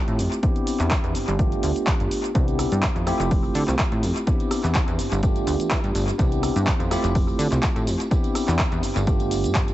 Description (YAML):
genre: filtered disco house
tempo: 125 BPM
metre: 4/4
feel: swing 54% on 16ths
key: C major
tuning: A4 = 441 Hz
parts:
  - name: bell-like tine electric piano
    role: accompaniment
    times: 0.0-9.7 s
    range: A3 to G4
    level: -26 LUFS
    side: equal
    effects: phaser, vintage 12-bit sampler grit, sidechain pumping, low-pass filter
  - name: plucky analog bass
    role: bass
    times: 0.1-9.7 s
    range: F1 to E3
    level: -24 LUFS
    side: equal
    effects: sidechain pumping, low-pass filter
  - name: punchy analog drum machine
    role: drums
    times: 0.1-9.7 s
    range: handclaps, hi-hat, rim click, shaker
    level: -29 LUFS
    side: equal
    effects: sidechain pumping on hats, sidechain pumping on perc, analog delay
  - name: tambourine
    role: percussion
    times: 0.1-9.7 s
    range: none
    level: -44 LUFS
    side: right 2 dB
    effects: none
  - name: electronic kick drum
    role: drums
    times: 0.4-9.7 s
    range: none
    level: -23 LUFS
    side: equal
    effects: none
room: little or no reverb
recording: echo-heavy mix, nothing above 8.0 kHz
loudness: -20 LUFS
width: side -15 dB against mid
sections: 0.0-9.7 A section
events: filter sweep 0.0-9.7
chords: 0.4 Cmaj9; 1.4 G9; 2.4 Cmaj9; 3.1 Fmaj9; 4.3 Cmaj9; 5.2 G9; 6.2 Cmaj9; 6.9 Fmaj9; 8.1 Cmaj9; 9.1 G9